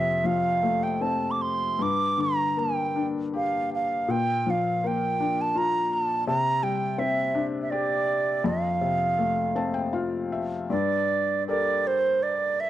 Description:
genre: celtic folk, Celtic slow air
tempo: 81 BPM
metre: 3/4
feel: uneven beats, rubato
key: G dorian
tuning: A4 = 441 Hz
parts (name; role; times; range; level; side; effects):
- bright baroque flute; melody; 0.0-12.7 s; C5 to D6; -25 LUFS; right 3 dB; slapback echo
- felt-muted upright piano; accompaniment; 0.0-12.7 s; F2 to A5; -28 LUFS; left 4 dB; none
room: light reverb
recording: dry, close 1970s-style studio recording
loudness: -23 LUFS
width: side -13 dB against mid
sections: 0.0-10.7 A section; 10.7-12.7 B section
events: felt piano fill 9.2-10.7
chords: 0.0 F; 1.8 Gm; 4.1 Bb; 6.3 Csus2; 8.4 F; 10.7 Gmadd9

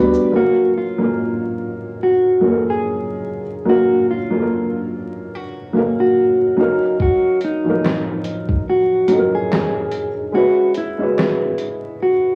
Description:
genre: lo-fi hip hop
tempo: 72 BPM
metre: 4/4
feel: swing 57% on 16ths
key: F# major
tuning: A4 = 440 Hz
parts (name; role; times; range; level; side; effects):
- mellow electric guitar; melody; 0.0-12.3 s; D#4 to G#4; -20 LUFS; equal; cassette tape
- felt-muted upright piano; accompaniment; 0.0-12.3 s; E#3 to E#5; -22 LUFS; equal; cassette tape
- lo-fi sampler-style drum kit; drums; 0.1-0.3, 7.0-11.8 s; handclaps, hi-hat, kick drum, shaker, snare drum; -24 LUFS; equal; cassette tape
room: moderate spring reverb, RT60 2.0 s, digital ambience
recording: home recording on cassette, vinyl crackle, small room ambience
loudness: -18 LUFS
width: mono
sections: 0.3-12.3 A section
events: kick muted 10.3-12.3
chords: 0.3 F#maj7; 6.6 D#m9; 10.3 E69

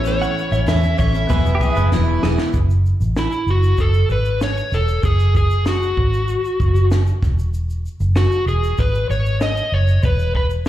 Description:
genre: acoustic pop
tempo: 96 BPM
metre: 4/4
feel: straight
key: unclear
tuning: A4 = 440 Hz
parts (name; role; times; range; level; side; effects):
- overdriven slide guitar; melody; 0.0-10.4 s; E4 to E5; -22 LUFS; left 1 dB; slapback echo, ping-pong delay
- clear baby grand piano; accompaniment; 0.0-2.6 s; B3 to E5; -30 LUFS; left 6 dB; slapback echo
- picked steel-string acoustic guitar; accompaniment; 0.0-2.6 s; E2 to E4; -22 LUFS; left 1 dB; double-tracked left and right
- vintage muted fingered electric bass; bass; 0.0-10.7 s; E1 to E2; -17 LUFS; equal; none
- compact cocktail drum kit; drums; 0.1-10.7 s; kick drum, shaker, snare drum; -21 LUFS; equal; none
- direct-recorded clean electric guitar; arpeggios; 0.2-2.4 s; G#4 to F#5; -30 LUFS; right 5 dB; slapback echo
- pedal steel guitar; second line; 1.5-2.5 s; E4 to G#4; -25 LUFS; right 1 dB; slapback echo
room: small room ambience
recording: live gig heard through the venue's PA, club reverb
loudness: -15 LUFS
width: side -13 dB against mid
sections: 0.0-2.5 A section; 2.5-10.7 B section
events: drum fill 1.9-2.5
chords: 0.0 A; 1.3 E; 2.5 F#sus2; 7.2 E

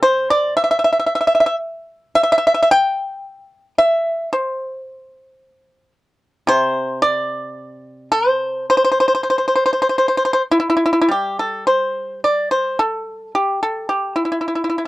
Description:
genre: chinese traditional, Chinese solo plucked strings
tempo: 46-58 BPM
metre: 4/4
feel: rubato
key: C gong mode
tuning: A4 = 440 Hz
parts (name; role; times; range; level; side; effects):
- pipa; solo; 0.0-14.9 s; C3 to G5; -15 LUFS; equal; none
room: light reverb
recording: dry, close 1970s-style studio recording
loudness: -15 LUFS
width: side -17 dB against mid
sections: 0.0-11.1 A section; 11.1-14.9 B section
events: none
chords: none

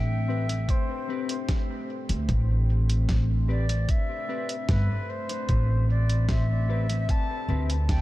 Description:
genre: ambient dub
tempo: 75 BPM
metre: 4/4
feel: straight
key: A minor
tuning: A4 = 440 Hz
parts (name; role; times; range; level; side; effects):
- silver concert flute; melody; 0.0-8.0 s; B4 to A5; -35 LUFS; left 2 dB; vintage 12-bit sampler grit, dub echo
- warm analog pad; sustained chords; 0.0-8.0 s; A3 to G4; -36 LUFS; left 1 dB; chorus
- upright bass; bass; 0.0-8.0 s; G1 to D2; -24 LUFS; equal; tube saturation
- mellow electric guitar; stabs; 0.3-7.8 s; C4 to B4; -38 LUFS; left 4 dB; analog chorus, dub echo
- lo-fi sampler-style drum kit; drums; 0.5-8.0 s; hi-hat, snare drum; -38 LUFS; equal; overdrive, dub echo
- electronic kick drum; drums; 0.7-8.0 s; none; -26 LUFS; equal; overdrive
room: little or no reverb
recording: none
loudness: -23 LUFS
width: side -16 dB against mid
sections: 0.0-8.0 A section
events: none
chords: 0.0 Am9

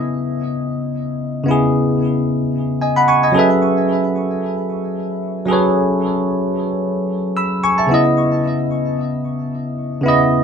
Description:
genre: amapiano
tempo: 112 BPM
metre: 4/4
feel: swing 55% on 16ths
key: C# minor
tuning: A4 = 440 Hz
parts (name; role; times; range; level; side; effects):
- bell-like tine electric piano; solo; 0.0-10.4 s; C#3 to E6; -15 LUFS; equal; lush chorus, digital delay
room: light reverb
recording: rough home demo mix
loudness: -15 LUFS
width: side -6 dB against mid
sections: 0.0-7.9 A section; 7.9-10.4 B section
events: drop 7.9-10.4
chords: 0.0 C#m9; 3.3 F#m11; 7.9 C#m9

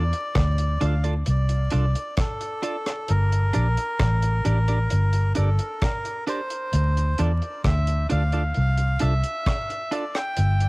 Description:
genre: roots reggae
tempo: 66 BPM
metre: 4/4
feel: straight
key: D minor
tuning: A4 = 440 Hz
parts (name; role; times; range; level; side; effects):
- melodica; melody; 0.0-10.7 s; A4 to G5; -29 LUFS; equal; cassette tape, dub echo
- clean electric guitar; accompaniment; 0.0-10.0 s; D4 to D5; -32 LUFS; right 3 dB; cassette tape, dub echo
- vintage muted fingered electric bass; bass; 0.0-10.7 s; G1 to E2; -20 LUFS; equal; none
- deep reggae drum kit; drums; 0.1-10.7 s; hi-hat, kick drum, rim click; -26 LUFS; equal; cassette tape
room: studio ambience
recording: home recording on cassette, vinyl crackle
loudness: -21 LUFS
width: side -25 dB against mid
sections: 0.0-10.7 A section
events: none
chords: 0.0 Dm; 3.1 Gm; 6.7 Dm

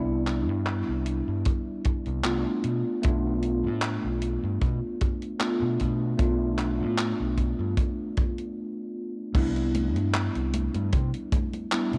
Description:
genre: vaporwave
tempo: 76 BPM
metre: 4/4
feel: swing 54% on 16ths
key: C major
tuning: A4 = 440 Hz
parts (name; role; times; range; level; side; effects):
- bell-like tine electric piano; accompaniment; 0.0-12.0 s; G3 to F4; -31 LUFS; equal; ensemble chorus, analog delay
- overdriven fingered electric bass; bass; 0.0-12.0 s; B1 to C3; -31 LUFS; equal; none
- gated 80s digital drum machine; drums; 0.3-12.0 s; congas, crash cymbal, handclaps, hi-hat; -35 LUFS; equal; gated reverb
- kick drum; drums; 1.5-11.5 s; none; -28 LUFS; equal; none
room: little or no reverb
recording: worn, warbling old tape, cassette tape, warbly pitch drift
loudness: -27 LUFS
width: mono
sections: 0.0-9.4 A section; 9.4-12.0 B section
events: stop 8.6-9.4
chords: 0.0 Cmaj9; 2.6 G7/B (rootless); 9.4 Cmaj9

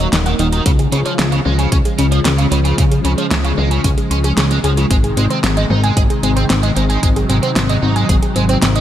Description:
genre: synthwave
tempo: 113 BPM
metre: 4/4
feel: straight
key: unclear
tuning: A4 = 441 Hz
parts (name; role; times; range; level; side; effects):
- analog string pad; sustained chords; 0.0-8.8 s; C3 to Bb3; -20 LUFS; equal; ensemble chorus, sidechain pumping
- soft round pluck; arpeggios; 0.0-8.8 s; C4 to C6; -22 LUFS; equal; chorus, tape echo
- biting overdriven guitar; riff; 0.0-8.8 s; Db3 to Ab4; -22 LUFS; right 2 dB; ensemble chorus, tape echo
- fat analog bass; bass; 0.0-8.8 s; Eb1 to Db2; -16 LUFS; equal; tube saturation
- pop drum kit; drums; 0.1-8.8 s; hi-hat, snare drum, toms; -20 LUFS; equal; small room ambience, gated reverb
- electronic kick drum; drums; 0.7-8.2 s; none; -16 LUFS; equal; small room ambience
room: light reverb, digital ambience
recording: none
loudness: -12 LUFS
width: side -11 dB against mid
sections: 0.0-8.8 A section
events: none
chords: 0.0 Ebm; 0.7 Db; 4.9 Ab

